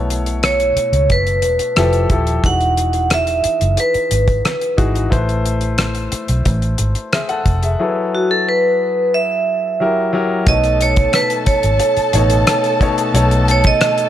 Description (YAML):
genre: lush 1970s-style soul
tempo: 90 BPM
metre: 4/4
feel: straight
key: unclear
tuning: A4 = 440 Hz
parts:
  - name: clear concert grand piano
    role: accompaniment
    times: 0.0-14.1 s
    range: B2 to F#5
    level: -21 LUFS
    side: left 3 dB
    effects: none
  - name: vintage muted fingered electric bass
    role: bass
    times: 0.0-13.7 s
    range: D#1 to C#2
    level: -18 LUFS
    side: equal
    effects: none
  - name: damped 70s drum kit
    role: drums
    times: 0.1-14.1 s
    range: hi-hat, kick drum, rim click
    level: -18 LUFS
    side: equal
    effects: none
  - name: vibraphone with hard mallets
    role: melody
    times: 0.4-14.1 s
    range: F#4 to F#5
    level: -16 LUFS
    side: right 2 dB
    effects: none
  - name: warm studio string section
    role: second line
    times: 10.5-14.1 s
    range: A4 to A5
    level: -21 LUFS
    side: left 2 dB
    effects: none
room: light reverb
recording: none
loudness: -13 LUFS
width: side -11 dB against mid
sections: 0.0-10.5 A section; 10.5-14.1 B section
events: none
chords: 0.0 B9sus4; 1.8 Fmaj9; 2.4 Emaj9; 5.1 Amadd9; 7.8 F#m11; 9.8 F#7b9; 10.5 B9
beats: 0.43 1.10 1.77 | 2.44 3.11 3.78 4.45 | 5.12 5.79 6.46 7.12 | 7.79 8.46 9.13 9.80 | 10.47 11.14 11.81 12.48 | 13.15 13.81